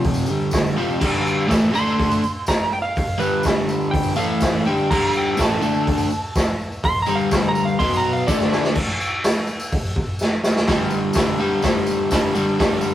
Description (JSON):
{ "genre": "garage rock duo or trio", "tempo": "124 BPM", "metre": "4/4", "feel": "straight", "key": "G mixolydian", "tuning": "A4 = 440 Hz", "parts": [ { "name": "electric slide guitar", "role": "melody", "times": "0.0-8.7 s", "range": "B4 to C6", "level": "-23 LUFS", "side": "right 1 dB", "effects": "slapback echo" }, { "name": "overdriven electric guitar", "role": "riff", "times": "0.0-12.9 s", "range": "F2 to D4", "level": "-20 LUFS", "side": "left 1 dB", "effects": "none" }, { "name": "raw garage drum kit", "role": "drums", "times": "0.0-12.7 s", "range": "crash cymbal, hi-hat, kick drum, snare drum", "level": "-21 LUFS", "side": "equal", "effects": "none" }, { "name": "tambourine", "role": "percussion", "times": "0.0-12.9 s", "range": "none", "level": "-38 LUFS", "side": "left 1 dB", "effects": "none" } ], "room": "moderate studio reverb, RT60 0.6 s", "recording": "rough rehearsal-room recording", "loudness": "-17 LUFS", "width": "side -12 dB against mid", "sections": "0.0-8.8 A section; 8.8-10.7 B section; 10.7-12.9 C section", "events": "electric slide guitar solo 0.0-8.8; drum fill 8.3-8.8, 10.2-10.7", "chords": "0.3 G5; 0.8 F5; 1.0 G5; 1.8 D5; 3.2 G5; 4.2 A5; 4.7 G5; 5.6 D5; 7.1 G5; 7.8 B5; 8.3 D5; 8.8 N.C.; 10.7 G5", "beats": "0.05 0.54 | 1.02 1.51 1.99 2.48 | 2.96 3.44 3.93 4.41 | 4.90 5.38 5.86 6.34 | 6.83 7.31 7.79 8.27 | 8.76 9.24 9.72 10.20 | 10.68 11.16 11.64 12.12 | 12.60" }